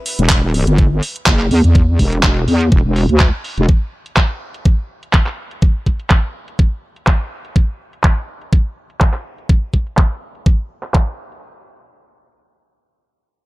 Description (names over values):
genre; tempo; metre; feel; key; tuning
bass house; 124 BPM; 4/4; swing 54% on 16ths; E minor; A4 = 440 Hz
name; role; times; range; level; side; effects
garage drum kit; drums; 0.1-11.4 s; handclaps, hi-hat; -19 LUFS; right 1 dB; low-pass filter on hats, low-pass filter on snare
wobble bass; bass; 0.2-3.7 s; E1 to E2; -13 LUFS; equal; chorus, tube saturation, sidechain pumping
electronic kick drum; drums; 0.3-11.1 s; none; -13 LUFS; equal; none
room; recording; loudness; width
little or no reverb; none; -13 LUFS; side -19 dB against mid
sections
0.0-11.4 A section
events
filter sweep on drum 0.0-11.4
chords
none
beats
0.30 0.78 1.27 | 1.75 2.23 2.72 3.20 | 3.69 4.17 4.66 5.14 | 5.62 6.11 6.59 7.07 | 7.56 8.04 8.53 9.01 | 9.49 9.98 10.46 10.95